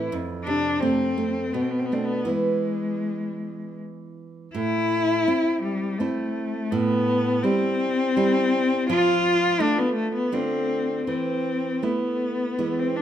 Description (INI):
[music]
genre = romantic duo for cello and classical guitar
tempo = 82 BPM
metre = 3/4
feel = uneven beats, rubato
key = A minor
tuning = A4 = 442 Hz
[part]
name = warm cello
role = melody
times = 0.0-13.0 s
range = G3 to F4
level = -23 LUFS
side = left 2 dB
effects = none
[part]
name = nylon-string guitar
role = accompaniment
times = 0.0-13.0 s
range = F2 to F4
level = -26 LUFS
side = right 3 dB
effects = none
[sound]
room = moderate recital hall reverb, RT60 1.7 s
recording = minimal, uncompressed stereo recording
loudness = -21 LUFS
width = side -10 dB against mid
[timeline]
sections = 0.0-4.5 A section; 4.5-13.0 B section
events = none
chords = 0.1 F; 1.5 Bm7; 2.3 E; 4.5 Am; 6.7 C/A; 8.9 F; 10.3 Dm; 11.1 Esus4